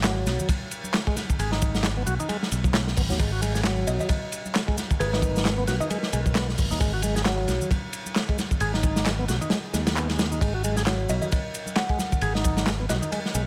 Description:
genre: breakbeat, breaks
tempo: 133 BPM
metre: 4/4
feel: swing 57% on 16ths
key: G# minor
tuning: A4 = 441 Hz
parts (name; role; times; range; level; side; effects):
- percussive tonewheel organ; riff; 0.0-13.4 s; F#3 to G#4; -33 LUFS; equal; slow rotary speaker, tube saturation, vintage 12-bit sampler grit, delay
- picked electric bass; bass; 0.0-13.5 s; G#1 to D#2; -29 LUFS; equal; none
- crunchy breakbeat drum kit; drums; 0.0-13.5 s; hi-hat, kick drum, ride cymbal, snare drum; -28 LUFS; equal; none
- electronic handclaps and shaker; drums; 0.0-13.4 s; none; -35 LUFS; equal; none
- congas; percussion; 0.2-13.2 s; none; -39 LUFS; equal; none
- kalimba; melody; 3.9-6.3, 11.1-13.3 s; B4 to F#5; -35 LUFS; equal; AM radio sound, delay
- swell; sound effects; 9.7-10.4 s; none; -43 LUFS; equal; none
room: small room reverb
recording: none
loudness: -25 LUFS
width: mono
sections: 0.0-13.5 A section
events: none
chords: 0.0 G#m

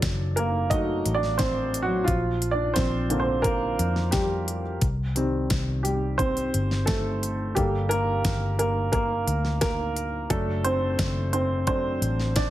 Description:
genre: piano-driven pop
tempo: 88 BPM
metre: 4/4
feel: straight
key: G minor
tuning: A4 = 440 Hz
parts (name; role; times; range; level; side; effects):
- warm upright piano; accompaniment; 0.0-12.5 s; D3 to Eb5; -25 LUFS; right 1 dB; none
- vintage muted picked electric bass; bass; 0.0-12.5 s; F#1 to F2; -28 LUFS; left 1 dB; none
- pop drum kit; drums; 0.0-12.5 s; hi-hat, kick drum, snare drum; -28 LUFS; left 1 dB; none
room: moderate large studio reverb, RT60 0.9 s, digital ambience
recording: heavily compressed radio sound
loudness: -23 LUFS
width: side -14 dB against mid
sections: 0.0-12.5 A section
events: upright piano solo 0.0-12.5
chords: 0.0 D/F#; 2.1 Bbadd9; 4.8 Cm; 7.6 Gmadd9; 10.3 D/F#

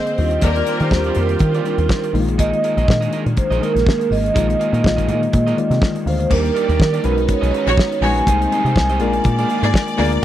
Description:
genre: disco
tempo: 122 BPM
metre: 4/4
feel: swing 56% on 16ths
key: unclear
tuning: A4 = 441 Hz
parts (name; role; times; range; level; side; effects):
- vibraphone with soft mallets; melody; 0.0-10.2 s; Bb4 to G#5; -21 LUFS; right 3 dB; none
- rich symphonic string section; second line; 0.0-1.1, 7.7-10.2 s; G#3 to D5; -23 LUFS; left 2 dB; none
- mellow reed electric piano; accompaniment; 0.0-10.2 s; D3 to F5; -22 LUFS; left 5 dB; fast tremolo
- clear symphonic string section; sustained chords; 0.0-10.2 s; C3 to D5; -27 LUFS; right 2 dB; none
- electric guitar at the edge of break-up; accompaniment; 0.1-10.2 s; Bb3 to Eb5; -28 LUFS; right 8 dB; none
- damped 70s drum kit; drums; 0.1-10.2 s; crash cymbal, hi-hat, kick drum, snare drum; -18 LUFS; equal; none
- deep dub picked electric bass; bass; 0.2-10.2 s; Ab1 to Eb3; -19 LUFS; equal; none
room: studio ambience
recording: dry, close 1970s-style studio recording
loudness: -15 LUFS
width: side -12 dB against mid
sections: 0.0-6.3 A section; 6.3-10.2 B section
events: reed electric piano fill 5.3-6.3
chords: 0.2 Ebmaj9; 2.1 Bb7sus4; 6.3 Ebmaj7; 7.0 B69; 8.3 Abmaj7/C; 9.0 Bb7

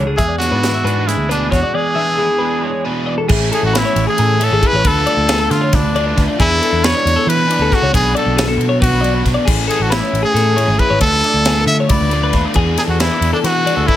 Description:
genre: math rock and midwest emo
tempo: 272 BPM (eighths)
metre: 7/8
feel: straight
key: A major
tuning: A4 = 439 Hz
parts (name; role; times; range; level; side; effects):
- twelve-string electric guitar; accompaniment; 0.0-3.3 s; E2 to E4; -24 LUFS; right 6 dB; plate reverb
- twelve-string electric guitar; arpeggios; 0.0-14.0 s; G#4 to E5; -20 LUFS; left 5 dB; plate reverb
- crunchy overdriven guitar; riff; 0.0-14.0 s; A2 to G#4; -20 LUFS; right 1 dB; none
- picked electric bass; bass; 0.0-13.9 s; G#1 to E3; -18 LUFS; equal; none
- bright trumpet; melody; 0.2-14.0 s; D4 to E5; -17 LUFS; equal; plate reverb
- crisp fusion drum kit; drums; 0.2-14.0 s; crash cymbal, hi-hat, kick drum, ride cymbal, snare drum; -19 LUFS; equal; none
room: light reverb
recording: none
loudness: -12 LUFS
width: side -12 dB against mid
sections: 0.0-3.3 A section; 3.3-14.0 B section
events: none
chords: 0.2 E7; 3.3 Amaj7; 4.8 Dm6; 6.4 E7sus4; 7.9 Bm7; 9.5 Amaj7; 11.0 Dm6; 12.6 E7sus4

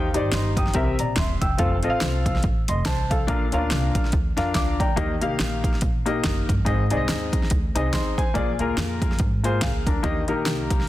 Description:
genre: uptempo gospel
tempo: 142 BPM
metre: 4/4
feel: swing 58% on 8ths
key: Eb major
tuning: A4 = 437 Hz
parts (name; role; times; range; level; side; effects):
- clear concert grand piano; accompaniment; 0.0-10.8 s; Ab2 to E6; -25 LUFS; left 2 dB; none
- upright bass; bass; 0.0-10.8 s; Eb1 to Ab2; -26 LUFS; equal; none
- deep house drum kit; drums; 0.1-10.8 s; hi-hat, kick drum, snare drum; -24 LUFS; equal; overdrive
room: light reverb, digital ambience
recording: dense, heavily limited modern master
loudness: -20 LUFS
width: side -15 dB against mid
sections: 0.0-10.9 A section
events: grand piano fill 4.3-5.0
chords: 0.0 Cm; 0.7 C7; 1.6 F; 3.3 Bb; 5.0 Eb; 6.7 Ab; 8.4 Bb7; 10.0 Eb

